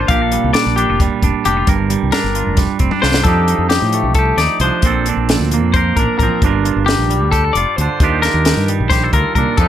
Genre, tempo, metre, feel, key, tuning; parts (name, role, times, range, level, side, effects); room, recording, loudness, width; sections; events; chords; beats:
math rock and midwest emo; 265 BPM (eighths); 7/8; straight; G minor; A4 = 440 Hz
twangy electric guitar; accompaniment; 0.0-9.7 s; G2 to Bb4; -18 LUFS; right 8 dB; spring reverb
twangy electric guitar; arpeggios; 0.0-9.7 s; G4 to F5; -17 LUFS; left 7 dB
mellow fretless electric bass; bass; 0.0-9.7 s; F1 to A2; -18 LUFS; equal
compact cocktail drum kit; drums; 0.1-9.7 s; hi-hat, kick drum, snare drum, toms; -17 LUFS; equal
little or no reverb; -12 LUFS; side -10 dB against mid
0.0-3.3 A section; 3.3-9.7 B section
drum fill 2.9-3.3
0.1 Gm9/Bb; 1.7 Gm7; 3.3 F13; 4.8 Bbmaj9; 6.4 Gm7; 8.0 Ebmaj9
| 0.09 0.32 0.54 0.77 0.99 1.22 1.45 | 1.67 1.90 2.12 2.35 2.58 2.80 3.03 | 3.25 3.48 3.71 3.93 4.16 4.39 4.61 | 4.84 5.07 5.29 5.52 5.74 5.97 6.20 | 6.42 6.65 6.88 7.10 7.33 7.55 7.78 | 8.00 8.23 8.46 8.68 8.91 9.13 9.36 | 9.59